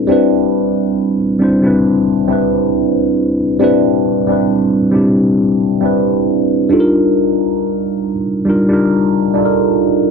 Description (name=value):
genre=R&B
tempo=68 BPM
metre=4/4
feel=swing 54% on 16ths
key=unclear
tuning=A4 = 440 Hz
part: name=tine electric piano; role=solo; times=0.0-10.1 s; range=G3 to C5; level=-11 LUFS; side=equal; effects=phaser
room=moderate booth ambience, RT60 0.2 s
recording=dry, close 1970s-style studio recording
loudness=-11 LUFS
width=side -5 dB against mid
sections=0.1-10.1 A section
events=none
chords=0.1 Cmaj9; 6.7 Ebmaj9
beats=| 0.08 0.96 1.85 2.73 | 3.61 4.49 5.38 6.26 | 7.14 8.02 8.90 9.79